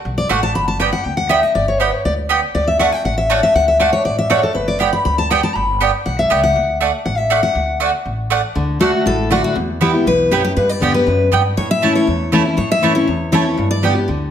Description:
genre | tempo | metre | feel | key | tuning
bluegrass | 240 BPM | 4/4 | straight | D major | A4 = 439 Hz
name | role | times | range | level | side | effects
upright bass | bass | 0.1-14.3 s | G1 to A2 | -23 LUFS | equal | none
picked steel-string acoustic guitar | accompaniment | 0.2-14.3 s | E2 to B5 | -16 LUFS | left 2 dB | none
mandolin | stabs | 0.3-13.9 s | A3 to A5 | -19 LUFS | right 6 dB | none
picked steel-string acoustic guitar | melody | 8.8-13.8 s | F#4 to E5 | -18 LUFS | left 1 dB | none
room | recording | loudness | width
wet large studio reverb, RT60 1.3 s | none | -14 LUFS | side -9 dB against mid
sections
0.6-8.6 A section; 8.6-14.3 B section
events
steel-string acoustic guitar solo 0.0-8.6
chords
0.0 D; 0.6 G; 2.6 D; 4.6 G; 6.6 D; 9.6 Em; 10.6 G; 11.6 A; 13.6 G

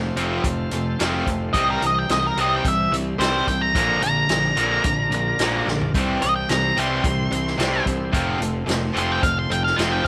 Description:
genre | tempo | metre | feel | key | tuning
classic rock | 109 BPM | 4/4 | straight | C mixolydian | A4 = 440 Hz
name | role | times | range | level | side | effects
picked steel-string acoustic guitar | accompaniment | 0.0-10.1 s | Bb2 to C5 | -37 LUFS | equal | none
bright tonewheel organ | sustained chords | 0.0-10.1 s | C4 to D5 | -38 LUFS | equal | none
cranked stack guitar | riff | 0.0-10.1 s | F2 to Bb3 | -30 LUFS | equal | overdrive
overdriven semi-hollow guitar | riff | 0.0-10.1 s | Bb2 to C4 | -29 LUFS | equal | none
fuzz picked electric bass | bass | 0.0-10.1 s | F1 to C2 | -30 LUFS | equal | overdrive
vintage drum kit | drums | 0.2-10.1 s | hi-hat, kick drum, snare drum, toms | -29 LUFS | equal | none
octave-fuzz lead guitar | melody | 1.5-10.1 s | Bb4 to C6 | -24 LUFS | equal | distortion, slapback echo
room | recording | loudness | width
light reverb | none | -21 LUFS | mono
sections
0.0-10.1 A section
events
lead electric guitar solo 0.0-10.1; drum fill 5.7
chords
0.0 F; 1.5 C; 3.7 Bb; 5.9 C; 8.1 F

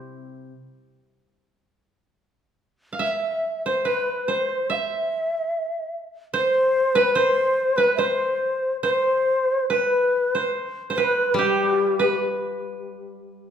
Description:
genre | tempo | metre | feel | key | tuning
japanese traditional, Japanese chamber music | 72 BPM | 2/4 | uneven beats, rubato | C ryukyu | A4 = 440 Hz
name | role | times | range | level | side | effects
koto | second line | 0.0-13.5 s | G4 to F5 | -24 LUFS | right 2 dB | none
koto | accompaniment | 0.0-0.5, 11.3-13.5 s | C3 to G4 | -30 LUFS | left 6 dB | none
breathy mellow shakuhachi | melody | 3.0-12.2 s | G4 to F5 | -22 LUFS | left 1 dB | none
room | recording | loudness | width
moderate recital hall reverb, RT60 1.5 s | recorded in a church or concert hall | -20 LUFS | side -8 dB against mid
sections
0.0-9.7 A section; 9.7-13.5 B section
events
none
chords
none

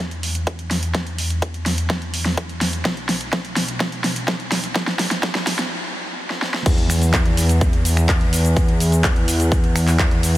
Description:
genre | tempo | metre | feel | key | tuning
EDM, festival progressive house | 126 BPM | 4/4 | straight | unclear | A4 = 440 Hz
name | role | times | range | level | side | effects
fat analog bass | bass | 0.0-10.4 s | B1 to E2 | -20 LUFS | equal | sidechain pumping
big-room dance drum kit | drums | 0.1-10.4 s | crash cymbal, finger snaps, handclaps, hi-hat, shaker, snare drum | -22 LUFS | equal | overdrive, studio ambience
electronic kick drum | drums | 0.5-10.1 s | none | -19 LUFS | equal | overdrive, high-pass filter on kick, studio ambience
room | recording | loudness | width
light reverb | high-pass filter | -17 LUFS | side -15 dB against mid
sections
0.0-6.7 A section; 6.7-10.4 B section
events
build-up 0.0-6.7; drum fill 0.0-5.7, 6.3-6.7; stop 5.7-6.7; drop 6.7-10.4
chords
none

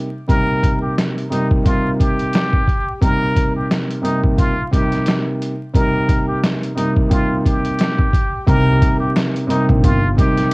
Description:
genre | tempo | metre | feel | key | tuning
hip hop, boom-bap hip-hop | 88 BPM | 4/4 | swing 57% on 16ths | C minor | A4 = 440 Hz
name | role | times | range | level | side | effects
dark concert grand piano | accompaniment | 0.0-10.5 s | C3 to Eb4 | -18 LUFS | equal | cassette tape
trumpet with plunger mute | melody | 0.3-10.5 s | Eb4 to Bb4 | -22 LUFS | equal | cassette tape
trip hop sampler-style drum kit | drums | 0.3-10.5 s | hi-hat, kick drum, snare drum | -17 LUFS | equal | cassette tape
upright bass | bass | 8.5-10.1 s | G1 to C2 | -18 LUFS | equal | none
finger snap | percussion | 9.2-10.5 s | none | -33 LUFS | left 3 dB | none
room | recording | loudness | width
light reverb | home recording on cassette, vinyl crackle | -14 LUFS | side -27 dB against mid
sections
0.0-8.5 A section; 8.5-10.5 B section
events
none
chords
0.0 Cm7

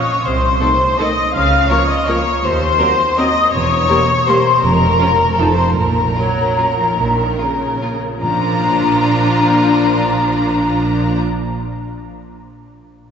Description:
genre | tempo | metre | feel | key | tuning
classical, orchestral ballroom waltz | 138-177 BPM | 3/4 | rubato | unclear | A4 = 440 Hz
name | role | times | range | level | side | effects
large flute ensemble | second line | 0.0-11.2 s | A5 to F6 | -17 LUFS | left 2 dB | none
rich chamber violin section | second line | 0.0-11.2 s | A4 to Bb5 | -21 LUFS | left 2 dB | none
rich chamber double bass section | bass | 0.2-11.2 s | E1 to Eb2 | -22 LUFS | right 2 dB | none
rich studio cello section | bass | 0.2-11.2 s | Eb2 to Db3 | -23 LUFS | right 3 dB | none
rich symphonic violin section | melody | 0.6-11.2 s | F4 to Bb4 | -29 LUFS | left 3 dB | none
rich chamber viola section | accompaniment | 0.6-11.2 s | Db3 to Eb4 | -21 LUFS | equal | none
mellow French horn section | sustained chords | 0.6-11.2 s | A3 to G4 | -23 LUFS | left 2 dB | none
timpani | percussion | 4.6-5.2, 8.2-11.2 s | F2 to Bb2 | -25 LUFS | right 1 dB | none
room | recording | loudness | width
wet church reverb, RT60 3.9 s | recorded in a church or concert hall, nothing above 7.8 kHz | -12 LUFS | side -7 dB against mid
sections
0.0-8.2 A section; 8.2-10.7 B section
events
slowing down 5.2-8.2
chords
0.2 Adim/C; 1.3 Bbm/Db; 2.4 Cm7b5/Eb; 3.5 Edim7; 4.6 Bbm/F; 5.4 F7; 5.8 Bbm; 8.2 Bb

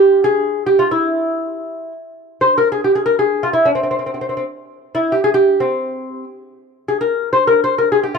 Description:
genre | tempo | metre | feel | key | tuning
persian | free time | none | none | C dastgah homayun | A4 = 439 Hz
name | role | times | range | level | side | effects
lute | solo | 0.0-8.2 s | C4 to C5 | -14 LUFS | equal | none
room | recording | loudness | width
light reverb, small room ambience | dry, close 1970s-style studio recording | -14 LUFS | side -5 dB against mid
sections
0.0-6.7 A section; 6.7-8.2 A section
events
none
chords
none

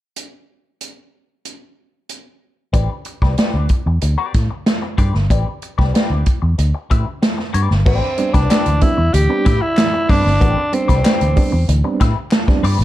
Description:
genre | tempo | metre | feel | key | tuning
funk | 94 BPM | 4/4 | straight | A minor | A4 = 440 Hz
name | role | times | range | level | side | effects
swinging big-band drum kit | drums | 0.2-12.8 s | crash cymbal, hi-hat, kick drum, snare drum | -17 LUFS | equal | none
clean electric guitar | accompaniment | 2.7-12.8 s | C4 to E5 | -26 LUFS | left 8 dB | wah, plate reverb
vintage muted fingered electric bass | bass | 2.7-12.8 s | G1 to A2 | -16 LUFS | equal | none
raspy tenor saxophone | melody | 7.9-11.7 s | C4 to G4 | -19 LUFS | equal | plate reverb
reed electric piano | stabs | 7.9-12.8 s | A2 to D4 | -23 LUFS | right 4 dB | overdrive, medium tremolo
group handclap | percussion | 8.5-12.5 s | none | -30 LUFS | left 4 dB | none
room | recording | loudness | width
light reverb | dark, warm production | -14 LUFS | side -14 dB against mid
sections
0.2-2.7 A section; 2.7-7.9 B section; 7.9-12.8 C section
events
none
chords
0.2 N.C.; 2.7 Am11 (rootless); 7.9 Am11

